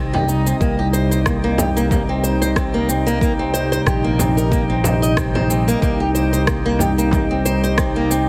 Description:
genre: organic downtempo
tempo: 92 BPM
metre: 4/4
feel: swing 56% on 16ths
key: C minor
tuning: A4 = 443 Hz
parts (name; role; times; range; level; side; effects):
- warm analog pad; sustained chords; 0.0-8.3 s; C3 to Eb4; -24 LUFS; equal; chorus, sidechain pumping
- flamenco guitar; arpeggios; 0.0-8.3 s; Bb3 to Eb5; -24 LUFS; equal; digital delay
- fretless electric bass; bass; 0.0-8.3 s; Bb1 to C2; -23 LUFS; equal; tube saturation, sidechain pumping
- drifting glass-harmonics texture; texture; 0.0-8.3 s; Eb4 to Eb5; -31 LUFS; equal; chorus, built-in reverb
- frame drum; percussion; 0.1-7.3 s; none; -26 LUFS; equal; none
- electronic cabasa and rim click; drums; 0.3-8.3 s; none; -28 LUFS; equal; small room reverb
- electronic kick drum; drums; 0.6-7.9 s; none; -24 LUFS; equal; small room reverb
room: moderate lush hall reverb, RT60 2.7 s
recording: heavily compressed radio sound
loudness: -18 LUFS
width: mono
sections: 0.0-8.3 A section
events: none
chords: 0.0 Cm7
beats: | 0.61 1.26 1.91 2.56 | 3.21 3.87 4.52 5.17 | 5.82 6.48 7.13 7.78

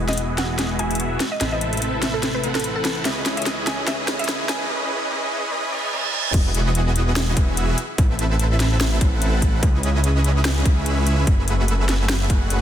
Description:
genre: future bass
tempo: 146 BPM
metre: 4/4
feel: swing 56% on 16ths, half-time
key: unclear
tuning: A4 = 440 Hz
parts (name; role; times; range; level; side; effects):
- ethereal airy pad; sustained chords; 0.0-4.7 s; C3 to B4; -33 LUFS; left 1 dB; ensemble chorus, built-in reverb, sidechain pumping
- dense compressed supersaw; riff; 0.0-12.6 s; A3 to F#5; -25 LUFS; right 1 dB; cassette tape, sidechain pumping, low-pass filter, dub echo
- wide detuned saw bass; bass; 0.0-12.6 s; E1 to C#2; -22 LUFS; equal; chorus, tube saturation, sidechain pumping
- riser and reverse cymbal; sound effects; 3.2-6.3 s; none; -31 LUFS; right 5 dB; none
- mallet-like synth pluck; melody; 0.1-4.7 s; A4 to G#5; -29 LUFS; equal; chorus, sidechain pumping, dub echo
- trap drum kit; drums; 0.1-12.6 s; crash cymbal, hi-hat, snare drum, toms; -25 LUFS; equal; studio reverb
- electronic kick drum; drums; 6.3-12.4 s; none; -18 LUFS; equal; studio reverb
room: light reverb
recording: dense, heavily limited modern master, high-pass filter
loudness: -18 LUFS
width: side -10 dB against mid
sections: 0.0-6.3 A section; 6.3-12.6 B section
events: build-up 0.0-6.3; drum fill 0.0-4.7, 6.0-6.3; filter sweep on supersaw synth 0.0-6.3; filter sweep on ambient pad 0.0-6.3; filter sweep 0.0-6.3; reverse cymbal 5.7-6.3; drop 6.3-12.6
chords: 0.0 Emaj9; 1.2 Amadd9; 3.1 C#m9; 6.3 Emaj9; 7.8 Amadd9; 9.6 C#m9; 11.3 F#m11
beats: 0.17 0.59 1.00 | 1.41 1.82 2.23 2.64 | 3.05 3.46 3.87 4.29 | 4.70 5.11 5.52 5.93 | 6.34 6.75 7.16 7.57 | 7.98 8.39 8.80 9.22 | 9.63 10.04 10.45 10.86 | 11.27 11.68 12.09 12.50

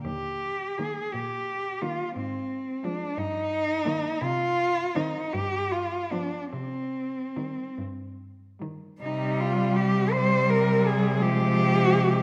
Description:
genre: classical, lyrical piece for cello ensemble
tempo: 47-60 BPM (dotted quarters)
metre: 6/8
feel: rubato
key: Eb major, C minor from 4.2 s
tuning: A4 = 440 Hz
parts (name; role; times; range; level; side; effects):
- rich cello; melody; 0.1-12.2 s; C4 to C5; -29 LUFS; equal; none
- rich cello; bass; 0.1-12.2 s; Eb2 to C3; -33 LUFS; equal; none
- rich cello; second line; 0.8-12.2 s; G3 to C4; -34 LUFS; equal; none
- rich cello; accompaniment; 0.8-12.2 s; Eb3 to G3; -32 LUFS; equal; none
room: moderate scoring stage reverb, RT60 1.6 s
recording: none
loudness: -27 LUFS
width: mono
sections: 0.0-9.0 A section; 9.0-12.2 B section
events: none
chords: 0.1 Eb; 2.2 Fm/Ab; 3.2 Eb/G; 4.2 Cm; 5.3 G7; 6.5 Cm; 9.0 C5; 11.2 Fmadd9/C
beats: | 0.05 1.14 | 2.16 3.17 | 4.21 5.34 | 6.54 7.78 | 9.02 10.13 | 11.21

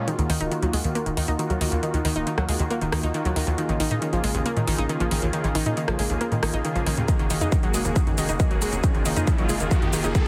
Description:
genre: uplifting trance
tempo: 137 BPM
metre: 4/4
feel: straight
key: Eb minor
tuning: A4 = 439 Hz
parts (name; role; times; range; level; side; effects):
- noise sweep and riser; sound effects; 0.0-0.1, 8.1-10.3 s; none; -37 LUFS; equal; none
- filtered supersaw swell; sustained chords; 0.1-10.3 s; Db3 to Ab4; -31 LUFS; equal; sidechain pumping
- analog pluck; arpeggios; 0.1-10.3 s; Eb2 to Eb4; -29 LUFS; equal; chorus, sidechain pumping, delay
- big-room dance drum kit; drums; 0.1-10.2 s; hi-hat, rim click, shaker; -34 LUFS; equal; overdrive, studio reverb
- tight sequencer bass; bass; 0.2-10.1 s; Eb1 to Bb2; -29 LUFS; equal; sidechain pumping
- electronic kick drum; drums; 7.1-10.2 s; none; -24 LUFS; equal; overdrive, studio reverb
room: light reverb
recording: heavily compressed radio sound, multiband compression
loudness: -24 LUFS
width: mono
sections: 0.1-10.3 A section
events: build-up 0.1-10.3; drum fill 7.1-10.3; riser 8.1-10.3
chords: 0.1 Ebmadd9; 3.6 Bbm7; 7.1 Gbadd9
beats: | 0.08 0.52 0.95 1.39 | 1.83 2.27 2.71 3.14 | 3.58 4.02 4.46 4.89 | 5.33 5.77 6.21 6.65 | 7.08 7.52 7.96 8.40 | 8.84 9.27 9.71 10.15

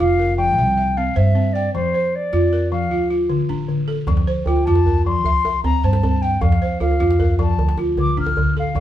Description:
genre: west african traditional, West African string and xylophone music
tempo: 103 BPM (dotted quarters)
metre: 12/8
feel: straight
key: F major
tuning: A4 = 440 Hz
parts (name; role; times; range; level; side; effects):
- mellow wooden flute; melody; 0.0-8.8 s; C5 to F6; -22 LUFS; left 2 dB; none
- balafon; arpeggios; 0.0-8.8 s; D3 to G5; -21 LUFS; equal; none
- upright bass; bass; 0.0-8.8 s; F1 to G2; -21 LUFS; equal; none
- djembe; percussion; 4.1-8.8 s; none; -21 LUFS; right 1 dB; none
room: wet large studio reverb, RT60 1.0 s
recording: band playing live in one room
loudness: -16 LUFS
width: side -12 dB against mid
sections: 0.0-8.8 A section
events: flute solo 0.0-8.8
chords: 0.0 F5; 0.6 C; 1.7 F5; 2.9 Dm; 4.1 F; 5.3 C; 6.4 F5; 7.6 Dm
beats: 0.00 0.58 1.17 | 1.75 2.33 2.92 3.50 | 4.08 4.67 5.25 5.84 | 6.42 7.01 7.59 8.18 | 8.76

